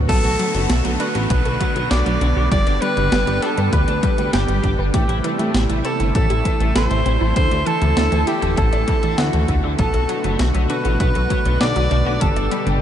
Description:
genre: synthwave.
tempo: 99 BPM.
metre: 4/4.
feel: straight.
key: unclear.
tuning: A4 = 441 Hz.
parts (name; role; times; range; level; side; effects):
brassy analog pad; sustained chords; 0.0-12.8 s; B2 to G4; -26 LUFS; right 2 dB; chorus, sidechain pumping.
wide unison pluck; arpeggios; 0.0-12.8 s; E3 to G5; -27 LUFS; equal; ping-pong delay.
chorused synth bass; bass; 0.0-12.8 s; D1 to A2; -20 LUFS; equal; none.
swell and downlifter; sound effects; 0.0-4.9 s; none; -32 LUFS; equal; none.
clear tenor saxophone; melody; 0.1-12.8 s; F#4 to D5; -23 LUFS; equal; diffuse ambient delay.
FM electric piano with soft pad layer; second line; 0.1-12.8 s; F#5 to D6; -30 LUFS; right 2 dB; chorus, ping-pong delay.
raw garage guitar; riff; 0.1-12.8 s; D3 to F#4; -32 LUFS; left 5 dB; overdrive, ensemble chorus, vintage 12-bit sampler grit, ping-pong delay.
clean 12-bit digital drum machine; drums; 0.1-12.8 s; crash cymbal, hi-hat, snare drum, toms; -27 LUFS; equal; overdrive, small room ambience.
electronic kick drum; drums; 0.1-12.3 s; none; -20 LUFS; equal; overdrive, small room ambience.
room: moderate huge ambient reverb, RT60 7.9 s.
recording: dreamy mix soaked in reverb, nothing above 10.9 kHz.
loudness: -16 LUFS.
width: side -10 dB against mid.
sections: 0.1-12.8 A section.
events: none.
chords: 0.1 Bm7; 2.5 G; 4.9 Am7; 7.4 Dsus2; 9.8 Bm7; 12.2 G.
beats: | 0.09 0.70 1.30 1.91 | 2.52 3.12 3.73 4.33 | 4.94 5.55 6.15 6.76 | 7.36 7.97 8.58 9.18 | 9.79 10.39 11.00 11.61 | 12.21.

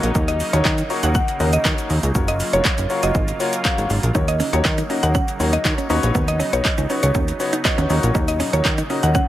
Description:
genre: dance-pop.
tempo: 120 BPM.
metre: 4/4.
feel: straight.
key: Eb minor.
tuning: A4 = 442 Hz.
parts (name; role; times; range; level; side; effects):
clear baby grand piano; accompaniment; 0.0-9.1 s; Db4 to Eb5; -25 LUFS; left 5 dB; sidechain pumping.
filtered supersaw swell; sustained chords; 0.0-9.3 s; Bb2 to F4; -29 LUFS; right 2 dB; sidechain pumping.
plucky analog bass; bass; 0.0-9.2 s; F1 to Eb3; -20 LUFS; equal; sidechain pumping.
pop drum kit; drums; 0.0-9.3 s; handclaps, hi-hat, kick drum, shaker; -22 LUFS; equal; overdrive.
mallet-like synth pluck; melody; 0.3-9.2 s; Db5 to Gb5; -25 LUFS; right 1 dB; chorus, sidechain pumping, tape echo.
direct-recorded clean electric guitar; riff; 4.1-9.2 s; B3 to Eb4; -26 LUFS; right 4 dB; analog chorus.
room: little or no reverb.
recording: none.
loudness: -17 LUFS.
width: side -13 dB against mid.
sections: 0.0-9.3 A section.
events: none.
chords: 0.0 Ebm7; 2.1 Gbmaj7; 4.2 Ebm7; 5.9 Badd9; 7.9 Ebm7.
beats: | 0.15 0.65 1.15 1.65 | 2.15 2.65 3.15 3.65 | 4.15 4.65 5.15 5.65 | 6.15 6.65 7.15 7.65 | 8.15 8.65 9.15.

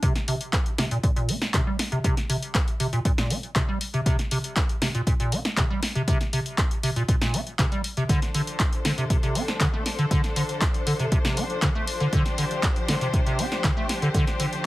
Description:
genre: acid house.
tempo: 119 BPM.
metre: 4/4.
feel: straight.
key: unclear.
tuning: A4 = 440 Hz.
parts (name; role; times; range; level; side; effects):
acid bass, square; riff; 0.0-14.5 s; Bb2 to D4; -26 LUFS; equal; tube saturation, analog chorus, tape echo.
electronic kick drum; drums; 0.0-14.2 s; none; -25 LUFS; equal; none.
punchy analog drum machine; drums; 0.0-14.6 s; handclaps, hi-hat, snare drum; -28 LUFS; equal; none.
rich studio string section; sustained chords; 8.1-14.7 s; F3 to C5; -30 LUFS; left 2 dB; sidechain pumping.
room: moderate studio ambience, RT60 0.5 s.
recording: heavily compressed radio sound, multiband compression.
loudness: -22 LUFS.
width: side -17 dB against mid.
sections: 0.0-14.7 A section.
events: none.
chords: 0.0 C5; 8.1 Dm7.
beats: | 0.03 0.53 1.03 1.54 | 2.04 2.55 3.05 3.56 | 4.06 4.56 5.07 5.57 | 6.08 6.58 7.08 7.59 | 8.09 8.60 9.10 9.61 | 10.11 10.61 11.12 11.62 | 12.13 12.63 13.13 13.64 | 14.14 14.65.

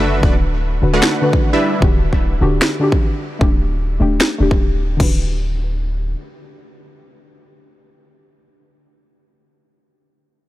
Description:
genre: future bass.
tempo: 151 BPM.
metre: 4/4.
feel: swing 54% on 16ths, half-time.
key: D major.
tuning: A4 = 441 Hz.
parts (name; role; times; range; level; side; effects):
soft round pluck; accompaniment; 0.0-9.7 s; D3 to B4; -21 LUFS; left 2 dB; chorus, cassette tape, sidechain pumping, tape echo.
supersaw stab; riff; 0.0-1.8 s; G3 to F#5; -20 LUFS; right 1 dB; sidechain pumping, tape echo.
long sustained 808-style bass; bass; 0.0-6.2 s; D1 to F#1; -19 LUFS; equal; sidechain pumping.
electronic kick drum; drums; 0.2-5.1 s; none; -15 LUFS; equal; none.
trap drum kit; drums; 1.0-5.1 s; crash cymbal, finger snaps, snare drum; -20 LUFS; equal; overdrive.
room: light reverb.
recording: dark, warm production.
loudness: -14 LUFS.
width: side -16 dB against mid.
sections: 0.0-5.0 A section; 5.0-8.2 B section.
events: none.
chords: 0.0 D6; 1.6 Em7/D; 3.4 A7sus4/D; 5.0 D6.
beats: | 0.23 0.63 1.03 1.42 | 1.82 2.22 2.62 3.01 | 3.41 3.81 4.21 4.60 | 5.00 5.40 5.79 6.19 | 6.59 6.99 7.38 7.78.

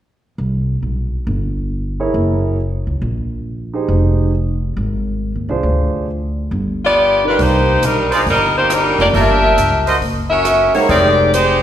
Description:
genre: jazz, big band swing.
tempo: 137 BPM.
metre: 4/4.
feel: swing 66% on 8ths.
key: C minor.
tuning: A4 = 435 Hz.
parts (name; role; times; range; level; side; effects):
upright bass; bass; 0.4-11.6 s; F1 to Eb2; -18 LUFS; equal; none.
warm grand piano; accompaniment; 2.0-11.3 s; C3 to G5; -20 LUFS; right 4 dB; slapback echo.
edgy saxophone section; melody; 6.8-11.6 s; F3 to E5; -12 LUFS; left 1 dB; slapback echo.
swinging big-band drum kit; drums; 7.4-11.5 s; hi-hat, kick drum, rim click; -27 LUFS; right 1 dB; none.
clear trumpet section; stabs; 8.1-11.1 s; Eb4 to G5; -19 LUFS; right 2 dB; slapback echo.
room: light reverb.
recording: live gig heard through the venue's PA, recital hall reverb.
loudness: -13 LUFS.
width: side -10 dB against mid.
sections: 0.4-7.4 A section; 7.4-11.6 B section.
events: none.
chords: 0.4 C5; 2.1 F#9; 3.9 Fm7; 5.6 Dm7b5; 6.5 G7; 7.4 Cm9; 9.1 Gm7; 10.0 F#7#11; 10.9 Fm11.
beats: | 0.39 0.83 1.27 1.71 | 2.14 2.58 3.02 3.46 | 3.89 4.33 4.77 5.21 | 5.64 6.08 6.52 6.95 | 7.39 7.83 8.26 8.70 | 9.14 9.57 10.01 10.45 | 10.89 11.32.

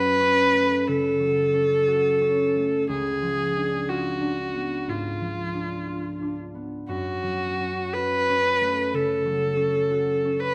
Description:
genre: classical, romantic duo for viola and harp.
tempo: 60 BPM.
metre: 4/4.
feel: rubato.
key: F# minor.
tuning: A4 = 441 Hz.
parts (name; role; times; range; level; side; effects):
warm viola; melody; 0.0-10.5 s; E#4 to B4; -25 LUFS; equal; none.
concert harp; accompaniment; 0.0-10.5 s; C#2 to F#4; -30 LUFS; equal; none.
room: moderate recital hall reverb, RT60 1.4 s.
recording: none.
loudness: -24 LUFS.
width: mono.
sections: 0.0-10.5 A section.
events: none.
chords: 0.0 F#m; 2.9 C#7b9; 6.9 F#m.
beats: 0.86 1.87 | 2.88 3.88 4.87 5.88 | 6.88 7.95 8.93 9.89.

